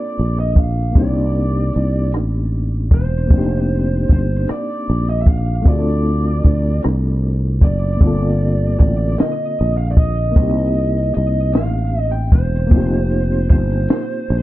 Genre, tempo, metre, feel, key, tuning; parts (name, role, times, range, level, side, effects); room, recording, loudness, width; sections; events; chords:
slow six-eight R&B; 51 BPM (dotted quarters); 6/8; straight; G minor; A4 = 440 Hz
fuzz lead guitar; melody; 0.0-14.4 s; C5 to G5; -25 LUFS; right 2 dB; distortion
overdriven reed electric piano; accompaniment; 0.0-14.4 s; D3 to A4; -23 LUFS; left 2 dB; medium tremolo
sustaining fretless electric bass; bass; 0.2-14.4 s; E1 to D2; -18 LUFS; equal
compact cocktail drum kit; drums; 0.6-14.1 s; hi-hat, kick drum, rim click, snare drum; -13 LUFS; equal
little or no reverb; low-pass filter, nothing above 7.5 kHz; -14 LUFS; side -16 dB against mid
0.0-14.4 A section
filter sweep 0.0-14.4
0.0 Gm11 (rootless); 1.0 Cm9; 3.3 F13sus4; 5.7 Dm7; 8.0 Gm11; 10.4 Cm7; 12.7 F9sus4